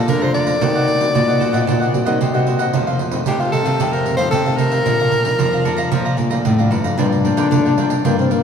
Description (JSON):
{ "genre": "samba and choro", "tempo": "113 BPM", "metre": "4/4", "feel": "straight", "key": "Bb major", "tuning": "A4 = 440 Hz", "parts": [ { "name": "clear soprano saxophone", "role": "melody", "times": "0.0-6.4 s", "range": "F4 to D5", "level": "-20 LUFS", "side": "left 1 dB", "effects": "none" }, { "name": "cavaquinho", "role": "accompaniment", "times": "0.0-8.4 s", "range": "Eb4 to Bb5", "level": "-24 LUFS", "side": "right 1 dB", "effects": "none" }, { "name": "nylon-string guitar", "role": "accompaniment", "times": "0.0-8.4 s", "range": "F2 to Gb4", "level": "-23 LUFS", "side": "left 3 dB", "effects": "none" }, { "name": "nylon-string guitar", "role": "bass", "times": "0.0-8.4 s", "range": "G2 to F3", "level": "-21 LUFS", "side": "equal", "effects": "none" }, { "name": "pandeiro", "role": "percussion", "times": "0.1-8.4 s", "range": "none", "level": "-21 LUFS", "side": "right 4 dB", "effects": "none" }, { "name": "breathy trombone", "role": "second line", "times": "7.0-8.4 s", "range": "Bb3 to D4", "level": "-18 LUFS", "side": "left 5 dB", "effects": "none" } ], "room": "wet church reverb, RT60 3.2 s", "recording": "recorded in a church or concert hall", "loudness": "-14 LUFS", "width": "side -7 dB against mid", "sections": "0.0-7.0 A section; 7.0-8.4 B section", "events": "trombone solo 7.0-8.4", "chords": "0.0 Bbmaj7; 0.6 Ebm6; 2.7 F7; 4.9 Bbmaj7; 7.0 Gm7", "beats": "0.08 | 0.61 1.15 1.68 2.21 | 2.74 3.27 3.80 4.33 | 4.86 5.39 5.92 6.46 | 6.99 7.52 8.05" }